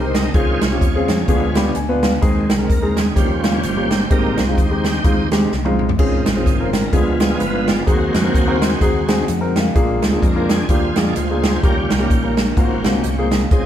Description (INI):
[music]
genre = uptempo gospel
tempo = 128 BPM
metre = 4/4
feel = swing 58% on 8ths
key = Ab major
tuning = A4 = 440 Hz
[part]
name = warm baby grand piano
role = accompaniment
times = 0.0-13.7 s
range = Ab2 to C6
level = -21 LUFS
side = left 2 dB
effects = none
[part]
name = bright tonewheel organ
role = sustained chords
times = 0.0-13.7 s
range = Eb3 to Eb5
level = -23 LUFS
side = right 2 dB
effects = slow rotary speaker, overdrive, chorus vibrato
[part]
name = fingered electric bass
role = bass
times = 0.0-13.7 s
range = G1 to F2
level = -23 LUFS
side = equal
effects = none
[part]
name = swinging big-band drum kit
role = drums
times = 0.1-13.6 s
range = hi-hat, kick drum, snare drum, splash cymbal, toms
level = -17 LUFS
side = equal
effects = none
[part]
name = mellow French horn section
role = sustained chords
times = 6.0-13.7 s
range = Db3 to F5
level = -31 LUFS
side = right 1 dB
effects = none
[sound]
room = moderate small room reverb, RT60 0.5 s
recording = band playing live in one room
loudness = -14 LUFS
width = side -10 dB against mid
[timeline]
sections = 0.0-13.7 A section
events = tonewheel organ solo 0.0-13.7; grand piano fill 1.3-2.2, 8.3-9.8; drum fill 5.5-6.0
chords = 0.3 Dbmaj7; 1.3 Ddim7; 2.2 Ab; 3.2 Eb7; 4.1 Abmaj7; 6.0 Dbmaj7; 6.9 Ddim7; 7.9 Ab7/Eb; 9.8 Bb7; 11.6 Eb7; 12.6 Ab13